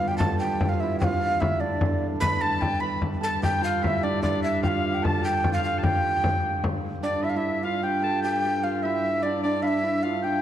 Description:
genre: medieval dance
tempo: 100 BPM (dotted quarters)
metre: 6/8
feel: straight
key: G mixolydian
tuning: A4 = 441 Hz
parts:
  - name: breathy mellow tenor recorder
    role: melody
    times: 0.0-10.4 s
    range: D5 to B5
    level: -26 LUFS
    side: right 1 dB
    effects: none
  - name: hammered dulcimer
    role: second line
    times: 0.0-10.4 s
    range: B3 to B4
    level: -30 LUFS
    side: right 3 dB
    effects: none
  - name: rich viola da gamba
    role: drone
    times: 0.0-10.4 s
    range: G2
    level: -31 LUFS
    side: equal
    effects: none
  - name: frame drum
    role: percussion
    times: 0.2-6.8 s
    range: none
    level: -27 LUFS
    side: left 2 dB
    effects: none
  - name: bright shawm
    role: second line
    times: 2.2-10.4 s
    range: D5 to B5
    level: -32 LUFS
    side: left 6 dB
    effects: none
room: wet concert hall reverb, RT60 2.1 s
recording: dark, warm production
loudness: -22 LUFS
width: side -10 dB against mid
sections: 0.0-7.0 A section; 7.0-10.4 B section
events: none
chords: none

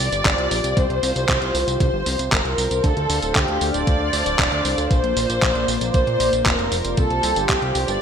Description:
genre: italo disco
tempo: 116 BPM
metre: 4/4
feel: straight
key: unclear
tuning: A4 = 439 Hz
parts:
  - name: dark studio violin section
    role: melody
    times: 0.0-8.0 s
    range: G4 to D5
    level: -22 LUFS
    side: left 1 dB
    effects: digital delay
  - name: warm analog pad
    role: sustained chords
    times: 0.0-8.0 s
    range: Bb3 to F5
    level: -26 LUFS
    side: right 1 dB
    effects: chorus
  - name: fat analog bass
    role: bass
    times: 0.0-8.0 s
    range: D1 to Bb2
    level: -25 LUFS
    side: equal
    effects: none
  - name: clean 12-bit digital drum machine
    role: drums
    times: 0.1-8.0 s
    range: handclaps, hi-hat, tambourine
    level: -24 LUFS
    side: equal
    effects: studio reverb, gated reverb
  - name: electronic kick drum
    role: drums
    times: 0.3-7.6 s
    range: none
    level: -21 LUFS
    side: equal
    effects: studio reverb
room: moderate plate reverb, RT60 1.9 s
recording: bright 1980s-style digital production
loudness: -17 LUFS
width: side -7 dB against mid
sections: 0.0-8.0 A section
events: none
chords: 0.0 Csus4; 2.8 Dm7; 4.9 Bbadd9; 7.0 Csus4

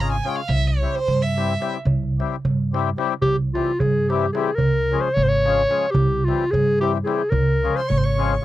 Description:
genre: balkan folk, Balkan wedding band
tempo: 220 BPM (eighths)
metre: 5/8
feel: straight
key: C phrygian dominant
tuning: A4 = 440 Hz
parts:
  - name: clear violin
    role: second line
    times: 0.0-1.7, 7.8-8.4 s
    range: C5 to Db6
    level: -26 LUFS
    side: right 3 dB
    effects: none
  - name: mellow accordion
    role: accompaniment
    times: 0.0-8.4 s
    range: E3 to Ab4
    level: -24 LUFS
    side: left 10 dB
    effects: none
  - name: upright bass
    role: bass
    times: 0.0-8.4 s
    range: Ab1 to G2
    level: -24 LUFS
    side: equal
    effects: none
  - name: darbuka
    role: percussion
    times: 0.0-8.3 s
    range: none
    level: -23 LUFS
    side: right 3 dB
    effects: none
  - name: clear clarinet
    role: melody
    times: 3.2-8.4 s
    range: F4 to Db5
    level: -21 LUFS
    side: left 1 dB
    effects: none
room: little or no reverb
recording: dry, close 1970s-style studio recording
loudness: -18 LUFS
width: side -14 dB against mid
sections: 0.0-3.2 A section; 3.2-8.4 B section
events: violin solo 0.0-3.2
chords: 0.5 C; 4.6 Db; 5.9 C; 7.3 Db

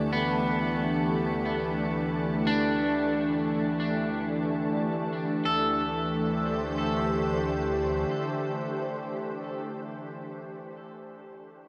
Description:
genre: ambient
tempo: free time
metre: none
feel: none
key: unclear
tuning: A4 = 440 Hz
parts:
  - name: soft additive organ-like pad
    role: sustained chords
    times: 0.0-9.7 s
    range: E3 to A5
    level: -32 LUFS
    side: equal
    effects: ensemble chorus, built-in reverb, shimmer reverb
  - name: warm sub bass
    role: bass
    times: 0.0-8.1 s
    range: D2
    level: -46 LUFS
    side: equal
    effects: none
  - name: bowed-like drone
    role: drone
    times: 0.0-9.7 s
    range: D3 to A3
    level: -37 LUFS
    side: equal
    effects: built-in reverb
  - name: electric guitar at the edge of break-up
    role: arpeggios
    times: 0.1-9.7 s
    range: B3 to A4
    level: -33 LUFS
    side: equal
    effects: delay, shimmer reverb
room: wet huge ambient reverb, RT60 8.7 s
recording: none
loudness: -28 LUFS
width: mono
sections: 0.0-5.4 A section; 5.4-9.0 B section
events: fade-out on sub bass 0.0-5.4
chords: 0.0 Dsus2

